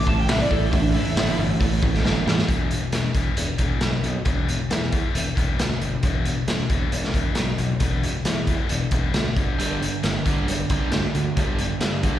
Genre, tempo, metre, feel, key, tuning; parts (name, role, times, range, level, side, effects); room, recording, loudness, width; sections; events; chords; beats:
hard rock; 135 BPM; 4/4; straight; E minor; A4 = 440 Hz
bluesy overdriven lead guitar; melody; 0.0-1.4 s; D4 to A5; -27 LUFS; right 1 dB; distortion, slapback echo, tape echo
sweeping resonant pad; sustained chords; 0.0-2.5 s; A3 to B4; -39 LUFS; right 1 dB
scooped high-gain guitar; riff; 0.0-12.2 s; E2 to G3; -28 LUFS; left 7 dB; distortion
sludgy distorted guitar; riff; 0.0-2.5, 9.6-12.2 s; G2 to G3; -28 LUFS; right 10 dB; overdrive
fuzz fingered electric bass; bass; 0.1-12.1 s; E1 to G2; -26 LUFS; equal; overdrive
raw garage drum kit; drums; 0.1-12.1 s; hi-hat, kick drum, snare drum; -23 LUFS; equal
little or no reverb; live gig heard through the venue's PA, recital hall reverb; -20 LUFS; side -12 dB against mid
0.0-2.5 A section; 2.5-12.2 B section
lead electric guitar solo 0.0-2.5; drum fill 2.0-2.5
0.0 A7(no3); 2.5 E5; 9.4 G5
0.29 | 0.73 1.17 1.61 2.05 | 2.49 2.93 3.37 3.82 | 4.26 4.70 5.15 5.59 | 6.03 6.48 6.92 7.36 | 7.81 8.25 8.70 9.14 | 9.59 10.03 10.48 10.92 | 11.37 11.81